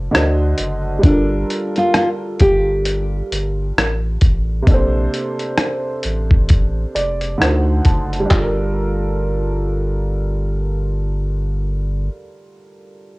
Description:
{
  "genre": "lo-fi hip hop",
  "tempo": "66 BPM",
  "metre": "4/4",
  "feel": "swing 60% on 16ths",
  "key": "G minor",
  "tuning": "A4 = 441 Hz",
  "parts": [
    { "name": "warm upright piano", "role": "accompaniment", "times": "0.0-13.2 s", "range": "C3 to A5", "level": "-22 LUFS", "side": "right 1 dB", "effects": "cassette tape, low-pass filter" },
    { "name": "warm sub bass", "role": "bass", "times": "0.0-12.1 s", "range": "F1 to D2", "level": "-20 LUFS", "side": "equal", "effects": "none" },
    { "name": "dusty soul sampler-style drum kit", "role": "drums", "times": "0.1-8.6 s", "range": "handclaps, hi-hat, kick drum, rim click", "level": "-15 LUFS", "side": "equal", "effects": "vintage 12-bit sampler grit, cassette tape" },
    { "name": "nylon-string guitar", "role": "melody", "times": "1.0-7.4 s", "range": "D4 to G4", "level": "-18 LUFS", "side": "equal", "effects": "low-pass filter" }
  ],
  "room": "light reverb",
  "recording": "home recording on cassette",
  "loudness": "-15 LUFS",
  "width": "side -23 dB against mid",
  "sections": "0.0-8.3 A section; 8.3-11.9 B section",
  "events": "upright piano fill 6.5-8.3",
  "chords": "0.1 D7b9; 1.0 Gm9; 4.7 Bbmaj9; 7.4 D7b9; 8.3 Gm9"
}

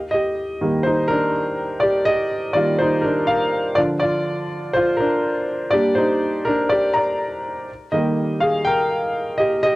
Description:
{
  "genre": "pop",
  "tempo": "123 BPM",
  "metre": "4/4",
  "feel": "straight",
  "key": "Eb major",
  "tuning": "A4 = 440 Hz",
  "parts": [
    { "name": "clear concert grand piano", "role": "solo", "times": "0.1-9.8 s", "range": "D3 to Bb5", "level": "-18 LUFS", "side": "equal", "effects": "cassette tape" }
  ],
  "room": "moderate small room reverb, RT60 0.5 s",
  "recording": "home recording on cassette",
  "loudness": "-18 LUFS",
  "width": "side -19 dB against mid",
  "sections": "0.0-9.8 A section",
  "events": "grand piano solo 0.0-9.8",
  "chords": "0.0 Eb; 3.8 Bb/D; 5.7 Gm; 7.7 Eb"
}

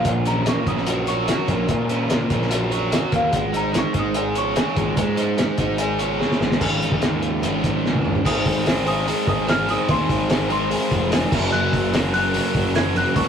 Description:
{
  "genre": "indie rock",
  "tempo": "146 BPM",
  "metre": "4/4",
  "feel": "straight",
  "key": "unclear",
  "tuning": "A4 = 441 Hz",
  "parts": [
    { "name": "celesta", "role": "melody", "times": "0.0-5.6, 8.3-13.3 s", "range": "F5 to Ab6", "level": "-26 LUFS", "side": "left 1 dB", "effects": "none" },
    { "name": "overdriven semi-hollow guitar", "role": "riff", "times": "0.0-13.3 s", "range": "Gb2 to Db5", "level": "-22 LUFS", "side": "equal", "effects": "none" },
    { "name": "cloth-damped thuddy drum kit", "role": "drums", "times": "0.0-13.3 s", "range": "crash cymbal, hi-hat, kick drum, snare drum, toms", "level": "-23 LUFS", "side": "equal", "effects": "none" },
    { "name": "fuzz picked electric bass", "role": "bass", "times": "0.1-13.3 s", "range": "F1 to Bb2", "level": "-26 LUFS", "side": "equal", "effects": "overdrive" }
  ],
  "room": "moderate booth ambience, RT60 0.2 s",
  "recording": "rough rehearsal-room recording, warm saturation",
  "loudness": "-18 LUFS",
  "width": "side -8 dB against mid",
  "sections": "0.0-6.6 A section; 6.6-8.2 B section; 8.2-13.3 C section",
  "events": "celesta solo 0.0-6.6; drum fill 6.2-6.6, 7.8-8.2",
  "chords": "0.1 Gb/Bb; 3.3 Absus4; 8.2 Ab; 11.3 Gb"
}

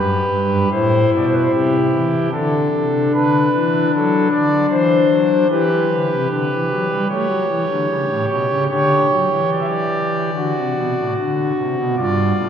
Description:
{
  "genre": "classical, chorale-style piece for pipe organ",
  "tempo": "74 BPM",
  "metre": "4/4",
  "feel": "rubato",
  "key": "unclear",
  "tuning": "A4 = 442 Hz",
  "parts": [
    { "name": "pipe organ, foundations", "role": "solo", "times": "0.0-12.5 s", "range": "F#2 to E5", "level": "-15 LUFS", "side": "left 1 dB", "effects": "none" }
  ],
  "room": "wet church reverb, RT60 3.8 s",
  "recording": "recorded in a church or concert hall",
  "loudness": "-15 LUFS",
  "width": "side -8 dB against mid",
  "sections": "0.0-12.5 A section",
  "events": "none",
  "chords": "0.0 G; 0.7 Am7; 2.3 D; 5.5 Em; 7.1 A7; 8.7 G5/D; 10.3 D; 12.0 G7(no3)"
}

